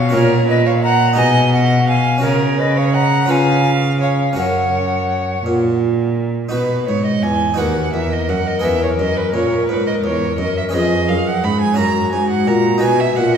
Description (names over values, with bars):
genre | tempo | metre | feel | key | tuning
classical, baroque-style sonata movement with continuo | 57 BPM (dotted quarters) | 6/8 | straight | F# major, B major from 6.5 s | A4 = 441 Hz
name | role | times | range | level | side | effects
hollow tenor recorder | melody | 0.0-13.4 s | F#4 to A#5 | -20 LUFS | left 5 dB | none
rich violin | second line | 0.0-13.4 s | A#4 to B5 | -21 LUFS | right 5 dB | none
harpsichord | accompaniment | 0.0-13.4 s | D#2 to C#5 | -19 LUFS | equal | none
clear cello | bass | 0.0-13.4 s | D#2 to C#3 | -19 LUFS | right 1 dB | none
room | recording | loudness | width
wet concert hall reverb, RT60 1.8 s | heard from further back in the room | -14 LUFS | side -7 dB against mid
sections
0.0-6.5 A section; 6.5-13.4 A section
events
none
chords
0.1 F#/A#; 1.2 G#m7/B; 2.2 F#/C#; 3.3 C#7; 4.4 F#; 6.5 B; 7.6 B/D#; 8.6 E; 10.7 C#7/E#; 11.8 F#; 12.8 B